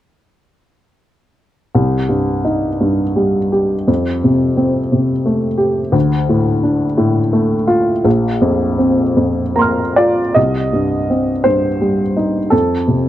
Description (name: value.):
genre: neoclassical minimalist piano.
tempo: 49-59 BPM (dotted quarters).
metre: 6/8.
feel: rubato.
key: C dorian.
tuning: A4 = 440 Hz.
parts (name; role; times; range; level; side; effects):
warm upright piano; solo; 1.7-13.1 s; Bb1 to F6; -13 LUFS; equal; none.
room: light reverb.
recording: worn, warbling old tape, cassette tape, warbly pitch drift.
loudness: -13 LUFS.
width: side -13 dB against mid.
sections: 1.8-10.4 A section; 10.4-13.1 B section.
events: none.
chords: 1.8 Cm; 3.9 Fadd9; 5.9 Dm; 8.1 Bbsus2; 10.4 Cm; 12.5 F.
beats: | 1.75 2.82 | 3.88 4.92 | 5.95 6.99 | 8.05 9.18 | 10.36 11.46 | 12.52.